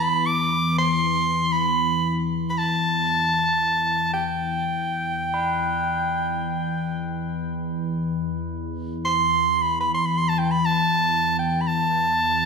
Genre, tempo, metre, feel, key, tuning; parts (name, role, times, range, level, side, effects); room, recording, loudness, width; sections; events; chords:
world meditative, free-time meditation music; free time; E minor; A4 = 440 Hz
bright soprano saxophone; melody; 0.0-12.5 s; G5 to D6; -22 LUFS; right 2 dB; ping-pong delay
deep dark ambient pad; drone; 0.0-12.5 s; E2 to E3; -26 LUFS; left 3 dB; chorus, built-in reverb
tubular bells; texture; 5.3-12.5 s; B4; -31 LUFS; equal; stereo widening
wet scoring stage reverb, RT60 1.6 s, small room reverb; -20 LUFS; side -5 dB against mid
0.0-12.5 A section